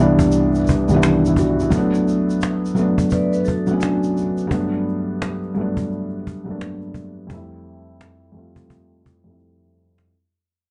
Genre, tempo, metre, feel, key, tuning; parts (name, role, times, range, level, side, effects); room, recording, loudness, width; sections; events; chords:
lo-fi hip hop; 86 BPM; 4/4; swing 65% on 16ths; A4 = 440 Hz
felt-muted upright piano; accompaniment; 0.0-10.1 s; C2 to F#4; -20 LUFS; equal; low-pass filter
cajon; drums; 0.2-10.1 s; -26 LUFS; equal; vintage 12-bit sampler grit
egg shaker; percussion; 0.2-4.5 s; -44 LUFS; equal
vibraphone with medium mallets; second line; 3.1-4.5 s; D4 to D5; -28 LUFS; equal; analog delay
moderate studio reverb, RT60 0.7 s; dark, warm production, nothing above 10.6 kHz; -19 LUFS; mono
0.0-10.1 A section
fade-out 0.0-10.1; filter sweep on felt piano 0.0-10.1; drum fill 9.4-10.1
0.0 Cmaj7; 1.7 Bm7; 4.5 Gmaj9; 7.3 Fmaj9